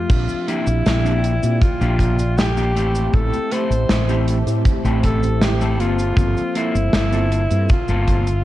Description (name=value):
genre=vaporwave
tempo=79 BPM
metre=4/4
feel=straight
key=unclear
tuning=A4 = 439 Hz
part: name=breathy alto saxophone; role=melody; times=0.0-8.4 s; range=E4 to C5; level=-24 LUFS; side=equal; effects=tape echo
part: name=mellow tine electric piano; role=accompaniment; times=0.0-7.7 s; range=F3 to A4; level=-27 LUFS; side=equal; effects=medium stereo tremolo, wide subtle chorus, vintage 12-bit sampler grit, analog delay
part: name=warbly tape-like pad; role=sustained chords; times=0.0-8.4 s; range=F3 to A5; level=-33 LUFS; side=right 1 dB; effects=chorus, built-in reverb
part: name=mellow fretless electric bass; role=bass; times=0.1-8.4 s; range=G1 to Bb2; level=-19 LUFS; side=equal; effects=none
part: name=gated 80s drum kit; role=drums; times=0.1-8.4 s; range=cabasa, crash cymbal, hi-hat, snare drum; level=-22 LUFS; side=equal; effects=vintage 12-bit sampler grit
part: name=kick drum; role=drums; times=0.1-8.2 s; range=none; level=-18 LUFS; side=equal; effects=vintage 12-bit sampler grit
part: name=electric guitar at the edge of break-up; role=riff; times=0.5-8.3 s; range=A3 to C5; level=-26 LUFS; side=left 2 dB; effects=wide subtle chorus
room=studio ambience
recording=cassette tape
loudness=-16 LUFS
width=side -15 dB against mid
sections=0.1-8.4 A section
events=none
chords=0.1 Bb6; 2.8 Am7; 5.8 Gm11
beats=| 0.10 0.86 1.62 2.38 | 3.14 3.90 4.66 5.42 | 6.18 6.93 7.70